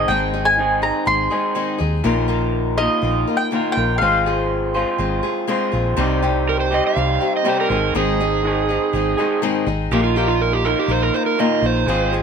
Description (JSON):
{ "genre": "folk rock and heartland rock", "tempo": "122 BPM", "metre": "4/4", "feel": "straight", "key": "unclear", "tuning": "A4 = 437 Hz", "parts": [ { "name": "mandolin", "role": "melody", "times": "0.0-5.7 s", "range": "Eb5 to C6", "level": "-19 LUFS", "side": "equal", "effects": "plate reverb" }, { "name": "picked steel-string acoustic guitar", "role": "accompaniment", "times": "0.0-12.2 s", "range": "Ab2 to Bb4", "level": "-24 LUFS", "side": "left 7 dB", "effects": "none" }, { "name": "electric guitar through a small old amp", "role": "riff", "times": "0.0-12.2 s", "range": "Ab2 to C5", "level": "-22 LUFS", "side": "right 2 dB", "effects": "none" }, { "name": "hollow-body short-scale fingered electric bass", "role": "bass", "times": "0.0-12.2 s", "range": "Ab1 to Eb2", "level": "-23 LUFS", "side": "equal", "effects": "none" }, { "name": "overdriven slide guitar", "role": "second line", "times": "6.5-12.1 s", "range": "F4 to F5", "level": "-20 LUFS", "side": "right 7 dB", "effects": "none" } ], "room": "moderate studio reverb, RT60 0.8 s", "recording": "none", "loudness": "-16 LUFS", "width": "side -6 dB against mid", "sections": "0.0-6.0 A section; 6.0-12.2 B section", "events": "electric slide guitar solo 6.0-12.2", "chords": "0.0 Ab; 2.1 Bbsus4; 4.0 Fm/Ab; 6.0 Cm; 7.7 Ab; 9.9 Bbsus4", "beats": "| 0.09 0.58 1.07 1.56 | 2.05 2.54 3.04 3.53 | 4.02 4.51 5.00 5.49 | 5.98 6.47 6.96 7.46 | 7.95 8.44 8.93 9.42 | 9.91 10.41 10.90 11.39 | 11.88" }